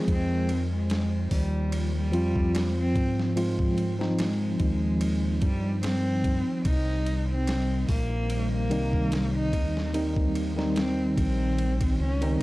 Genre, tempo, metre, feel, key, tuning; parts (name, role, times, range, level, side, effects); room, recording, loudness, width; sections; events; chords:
trip hop; 73 BPM; 4/4; swing 54% on 16ths; F minor; A4 = 439 Hz
tine electric piano; accompaniment; 0.0-12.4 s; Eb3 to Ab4; -29 LUFS; equal; harmonic tremolo
string machine, cellos; sustained chords; 0.0-12.4 s; F3 to C5; -36 LUFS; equal
rich cello; melody; 0.1-12.4 s; G3 to Eb4; -30 LUFS; equal; tape echo
deep dub fingered electric bass; bass; 0.1-12.4 s; Bb1 to Ab2; -28 LUFS; equal
boom bap sampler-style drum kit; drums; 0.1-12.4 s; hi-hat, kick drum, ride cymbal, snare drum; -31 LUFS; equal; small room reverb
digital ambience; dry, gritty hardware recording; -24 LUFS; side -19 dB against mid
0.1-12.4 A section
0.1 Fm; 6.7 Cm